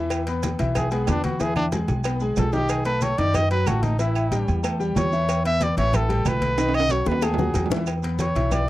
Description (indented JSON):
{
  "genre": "Afro-Cuban jazz",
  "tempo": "186 BPM",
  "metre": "4/4",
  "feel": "straight",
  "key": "unclear",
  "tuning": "A4 = 444 Hz",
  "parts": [
    { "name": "bright grand piano", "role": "accompaniment", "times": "0.0-8.6 s", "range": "D#3 to B5", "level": "-27 LUFS", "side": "left 2 dB", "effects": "none" },
    { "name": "upright bass", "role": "bass", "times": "0.0-8.7 s", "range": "A1 to F#2", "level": "-24 LUFS", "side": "equal", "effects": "none" },
    { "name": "agogo bells and timbales", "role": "percussion", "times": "0.1-8.7 s", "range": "none", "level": "-32 LUFS", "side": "right 6 dB", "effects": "none" },
    { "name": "claves", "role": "percussion", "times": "0.1-8.7 s", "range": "none", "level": "-38 LUFS", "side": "right 11 dB", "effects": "none" },
    { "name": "congas", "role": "percussion", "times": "0.1-8.7 s", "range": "none", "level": "-29 LUFS", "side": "left 2 dB", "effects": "none" },
    { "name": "cowbell and bongos", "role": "percussion", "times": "0.1-8.7 s", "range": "none", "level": "-33 LUFS", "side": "left 5 dB", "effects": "none" },
    { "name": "maracas", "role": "percussion", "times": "0.1-8.7 s", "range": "none", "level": "-40 LUFS", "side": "right 9 dB", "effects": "none" },
    { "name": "warm trumpet", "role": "melody", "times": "0.8-8.7 s", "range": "B3 to E5", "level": "-25 LUFS", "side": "equal", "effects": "none" }
  ],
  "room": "light reverb",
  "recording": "dry, close 1970s-style studio recording",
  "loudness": "-20 LUFS",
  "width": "side -16 dB against mid",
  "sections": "0.0-7.9 A section",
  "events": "trumpet solo 0.0-8.7; drum fill 1.4-2.7, 6.6-7.9",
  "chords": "0.0 E; 2.7 B7; 4.0 A7; 5.3 E5; 5.9 Asus2; 6.6 B6; 7.9 E5",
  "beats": "| 0.11 0.43 0.76 1.08 | 1.41 1.73 2.05 2.38 | 2.70 3.02 3.35 3.67 | 3.99 4.32 4.64 4.96 | 5.29 5.61 5.93 6.25 | 6.58 6.90 7.23 7.55 | 7.87 8.20 8.52"
}